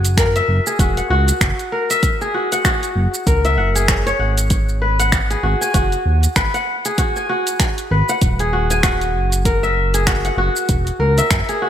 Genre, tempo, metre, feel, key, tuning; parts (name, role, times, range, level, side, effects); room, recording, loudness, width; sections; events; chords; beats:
organic downtempo; 97 BPM; 4/4; swing 58% on 16ths; A4 = 440 Hz
kora; arpeggios; 0.0-11.7 s; F#4 to G#5; -19 LUFS; left 1 dB; digital delay
smooth synth bass; bass; 0.0-11.4 s; D#1 to D#2; -18 LUFS; equal; tube saturation, sidechain pumping
deep house drum kit; drums; 0.0-11.6 s; finger snaps, hi-hat, shaker; -22 LUFS; right 1 dB
electronic kick drum; drums; 0.2-11.5 s; -19 LUFS; equal
moderate lush hall reverb, RT60 1.8 s; bright 1980s-style digital production; -15 LUFS; side -10 dB against mid
0.0-11.7 A section
0.0 F#9; 4.5 G#m7; 9.5 F#9
0.18 0.80 1.41 | 2.03 2.65 3.27 3.89 | 4.51 5.12 5.74 6.36 | 6.98 7.60 8.22 8.84 | 9.46 10.07 10.69 11.31